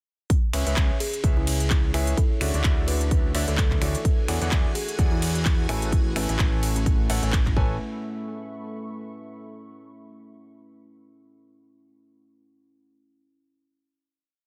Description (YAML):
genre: piano house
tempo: 128 BPM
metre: 4/4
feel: swing 56% on 16ths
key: A major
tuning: A4 = 438 Hz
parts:
  - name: electronic kick drum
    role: drums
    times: 0.3-7.7 s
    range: none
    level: -25 LUFS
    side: equal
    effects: small room ambience
  - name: house drum kit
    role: drums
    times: 0.3-7.5 s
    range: finger snaps, handclaps, hi-hat, ride cymbal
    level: -33 LUFS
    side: equal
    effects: small room ambience
  - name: deep dark ambient pad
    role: texture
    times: 1.0-9.6 s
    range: A3 to C#6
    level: -40 LUFS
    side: equal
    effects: chorus, built-in reverb, sidechain pumping
  - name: clear concert grand piano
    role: riff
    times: 0.5-7.7 s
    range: D3 to G#5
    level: -35 LUFS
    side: equal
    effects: sidechain pumping, delay
  - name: fat analog bass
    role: bass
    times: 0.5-7.8 s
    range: A1 to E2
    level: -28 LUFS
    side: equal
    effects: sidechain pumping
  - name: kalimba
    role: melody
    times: 1.0-7.1 s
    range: C#4 to B4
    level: -38 LUFS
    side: equal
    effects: delay
  - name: string machine, violins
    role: sustained chords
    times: 4.0-7.6 s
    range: F#4 to G#5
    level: -41 LUFS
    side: equal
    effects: ensemble chorus, sidechain pumping
room: little or no reverb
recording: dense, heavily limited modern master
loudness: -24 LUFS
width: mono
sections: 0.3-7.8 drop; 7.8-9.7 final chord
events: drop 0.3-7.8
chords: 0.3 C#m7; 2.2 Dmaj9; 4.0 E13; 5.7 Amaj9; 7.8 Aadd9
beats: | 0.30 0.77 1.24 1.71 | 2.17 2.64 3.11 3.58 | 4.05 4.52 4.99 5.46 | 5.92 6.39 6.86 7.33 | 7.80 8.27 8.74 9.21